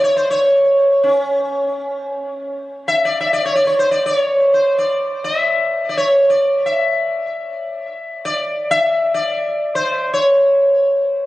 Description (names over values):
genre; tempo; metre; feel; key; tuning
indian classical, Hindustani; free time; none; none; unclear; A4 = 440 Hz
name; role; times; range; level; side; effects
sitar; solo; 0.0-11.3 s; C#4 to E5; -14 LUFS; equal; tape echo
room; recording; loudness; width
light reverb; recorded on a phone in the room, club reverb, compression; -14 LUFS; side -16 dB against mid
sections
0.0-2.7 A section; 2.7-11.3 A section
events
none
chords
none